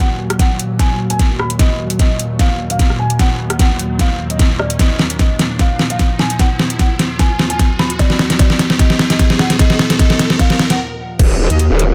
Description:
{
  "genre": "heavy wobble dubstep",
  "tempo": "150 BPM",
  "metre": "4/4",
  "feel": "swing 53% on 16ths, half-time",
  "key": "Eb minor",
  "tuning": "A4 = 443 Hz",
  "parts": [
    { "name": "felt-muted upright piano", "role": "melody", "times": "0.0-10.8 s", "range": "D5 to Cb6", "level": "-26 LUFS", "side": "equal", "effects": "dub echo" },
    { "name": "evolving wavetable pad", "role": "sustained chords", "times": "0.0-11.9 s", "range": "Eb2 to Gb4", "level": "-25 LUFS", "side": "equal", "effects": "chorus, built-in reverb, sidechain pumping" },
    { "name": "riser", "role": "sound effects", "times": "1.9-10.8 s", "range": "none", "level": "-30 LUFS", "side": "equal", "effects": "none" },
    { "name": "dubstep drum kit", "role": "drums", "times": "0.3-11.9 s", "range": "crash cymbal, hi-hat, rim click, snare drum", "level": "-18 LUFS", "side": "equal", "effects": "none" },
    { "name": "electronic kick drum", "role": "drums", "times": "0.4-11.3 s", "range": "none", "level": "-15 LUFS", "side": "equal", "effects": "none" },
    { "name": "growl bass", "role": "bass", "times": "11.2-11.9 s", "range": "Eb1", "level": "-15 LUFS", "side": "equal", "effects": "chorus, overdrive" },
    { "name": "dark brass ensemble", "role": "stabs", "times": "11.5-11.6 s", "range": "Bb3 to Eb5", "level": "-28 LUFS", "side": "equal", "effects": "dub echo" },
    { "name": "pulsing pluck wobble bass", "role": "bass", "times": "11.5-11.7 s", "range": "Eb2", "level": "-14 LUFS", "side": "equal", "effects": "chorus, overdrive" }
  ],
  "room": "digital ambience",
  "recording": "dense, heavily limited modern master",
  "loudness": "-14 LUFS",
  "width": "mono",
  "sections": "0.0-11.2 A section",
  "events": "build-up 0.0-11.2; drum fill 0.0-10.8; riser 1.9-10.8; stop 10.8-11.2",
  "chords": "0.0 Ebm"
}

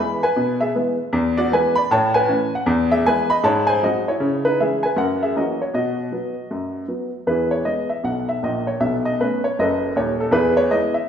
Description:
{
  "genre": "jazz, stride piano",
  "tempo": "156 BPM",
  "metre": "4/4",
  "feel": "swing 62% on 8ths",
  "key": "E major",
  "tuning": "A4 = 441 Hz",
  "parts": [
    { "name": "warm upright piano", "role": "solo", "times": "0.0-11.1 s", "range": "D#1 to B5", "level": "-18 LUFS", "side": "equal", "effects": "none" }
  ],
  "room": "wet recital hall reverb, RT60 1.6 s",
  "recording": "recorded in a church or concert hall",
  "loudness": "-18 LUFS",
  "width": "side -8 dB against mid",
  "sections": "0.0-7.3 A section; 7.3-11.1 B section",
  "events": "none",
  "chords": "0.0 E; 1.1 E7; 1.9 A; 2.7 E; 3.4 G#7; 4.2 C#m; 5.0 F#7; 5.7 B; 7.3 E; 8.8 B9; 10.3 E"
}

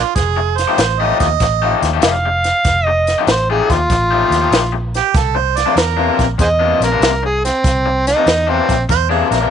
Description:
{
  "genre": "electric blues shuffle",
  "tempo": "96 BPM",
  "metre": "4/4",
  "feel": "swing 68% on 8ths",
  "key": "F mixolydian",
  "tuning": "A4 = 440 Hz",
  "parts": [
    { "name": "warm harmonica", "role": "second line", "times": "0.0-9.5 s", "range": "F4 to Eb5", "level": "-17 LUFS", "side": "right 14 dB", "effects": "overdrive" },
    { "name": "vintage muted fingered electric bass", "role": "bass", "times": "0.0-9.5 s", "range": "F1 to E2", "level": "-20 LUFS", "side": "right 1 dB", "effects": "none" },
    { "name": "compact cocktail drum kit", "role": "drums", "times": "0.2-9.4 s", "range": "hi-hat, kick drum, snare drum", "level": "-18 LUFS", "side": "equal", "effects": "none" },
    { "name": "raw garage guitar", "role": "riff", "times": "0.4-9.5 s", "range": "C3 to G4", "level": "-18 LUFS", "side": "left 13 dB", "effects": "overdrive" },
    { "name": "overdriven harmonica", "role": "melody", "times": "2.0-8.8 s", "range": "C4 to F5", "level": "-15 LUFS", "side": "right 1 dB", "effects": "none" }
  ],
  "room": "light reverb, small room ambience",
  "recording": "1960s-style stereo with parts hard left and right, nothing above 10.3 kHz",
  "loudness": "-12 LUFS",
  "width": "side -8 dB against mid",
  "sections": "0.0-9.5 A section",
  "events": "none",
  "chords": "0.2 F9; 5.1 C9"
}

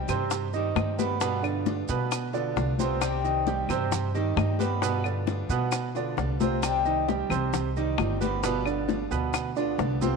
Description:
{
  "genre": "latin, Cuban son and guajira",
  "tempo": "133 BPM",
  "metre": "4/4",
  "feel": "straight",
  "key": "C harmonic minor",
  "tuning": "A4 = 440 Hz",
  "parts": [
    { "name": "picked old ladder-braced acoustic guitar", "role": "accompaniment", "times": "0.0-10.2 s", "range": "C3 to G4", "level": "-33 LUFS", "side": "left 11 dB", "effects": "none" },
    { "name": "warm concert grand piano", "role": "arpeggios", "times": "0.0-10.2 s", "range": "B2 to B5", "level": "-29 LUFS", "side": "right 10 dB", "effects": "none" },
    { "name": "upright bass", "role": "bass", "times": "0.0-10.2 s", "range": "G1 to B2", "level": "-30 LUFS", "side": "equal", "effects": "none" },
    { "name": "claves", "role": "percussion", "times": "0.1-9.6 s", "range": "none", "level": "-38 LUFS", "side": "left 12 dB", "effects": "none" },
    { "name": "congas", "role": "percussion", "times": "0.1-10.2 s", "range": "none", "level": "-34 LUFS", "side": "left 12 dB", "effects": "none" },
    { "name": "maracas", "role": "percussion", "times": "0.1-10.2 s", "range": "none", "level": "-40 LUFS", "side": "right 16 dB", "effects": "none" },
    { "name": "bongos", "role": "percussion", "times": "0.3-10.2 s", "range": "none", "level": "-35 LUFS", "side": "left 11 dB", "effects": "none" }
  ],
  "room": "moderate plate reverb, RT60 2.4 s",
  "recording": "1960s-style stereo with parts hard left and right",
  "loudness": "-24 LUFS",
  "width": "side -4 dB against mid",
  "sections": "0.0-10.2 A section",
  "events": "drum fill 6.4",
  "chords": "0.0 Cm; 1.2 G7; 3.0 Cm; 4.8 G7; 6.6 Cm; 8.4 G7"
}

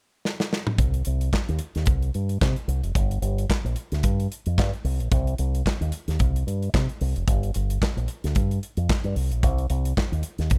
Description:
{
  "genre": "disco",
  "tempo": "111 BPM",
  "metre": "4/4",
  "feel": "swing 56% on 16ths",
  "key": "C minor",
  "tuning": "A4 = 440 Hz",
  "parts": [
    { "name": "modern studio drum kit", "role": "drums", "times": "0.3-10.6 s", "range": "handclaps, hi-hat, kick drum, snare drum, toms", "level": "-27 LUFS", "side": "equal", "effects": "none" },
    { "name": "fingered electric bass with an envelope filter", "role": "bass", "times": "0.8-10.6 s", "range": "F1 to C3", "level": "-26 LUFS", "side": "equal", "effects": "none" }
  ],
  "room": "little or no reverb",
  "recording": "none",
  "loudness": "-25 LUFS",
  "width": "mono",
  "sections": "0.8-10.6 A section",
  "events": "drum fill 0.2-0.8",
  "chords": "none"
}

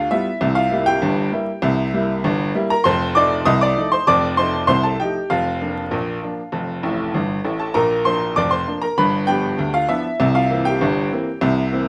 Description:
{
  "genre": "ragtime piano",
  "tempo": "98 BPM",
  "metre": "2/4",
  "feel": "straight",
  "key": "unclear",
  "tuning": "A4 = 440 Hz",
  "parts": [
    { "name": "clear upright piano", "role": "solo", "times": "0.0-11.9 s", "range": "F1 to Eb6", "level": "-19 LUFS", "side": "equal", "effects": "none" }
  ],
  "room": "moderate studio reverb, RT60 0.7 s",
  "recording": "vinyl crackle",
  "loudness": "-19 LUFS",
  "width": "mono",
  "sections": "0.0-11.9 A section",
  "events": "upright piano fill 6.8-7.8",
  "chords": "0.4 C7; 2.8 F7; 5.3 Bb/F; 6.5 F; 7.8 Bb; 9.0 G7; 10.2 C7"
}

